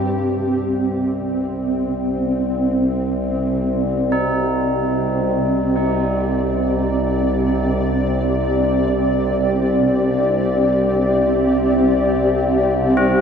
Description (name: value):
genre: dark ambient drone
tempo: free time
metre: none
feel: none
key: C minor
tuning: A4 = 438 Hz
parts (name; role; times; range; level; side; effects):
- granular cloud pad; sustained chords; 0.0-13.2 s; C4 to D5; -19 LUFS; equal; built-in reverb
- tubular bells; arpeggios; 0.0-13.2 s; C4 to Eb4; -27 LUFS; right 3 dB; tape echo
- overtone-sweeping drone; drone; 0.0-13.2 s; C2 to G2; -20 LUFS; equal; chorus, built-in reverb
room: wet plate reverb, RT60 3.6 s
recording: echo-heavy mix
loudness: -16 LUFS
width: side -7 dB against mid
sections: 0.0-13.2 A section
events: none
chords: 0.0 Cmadd9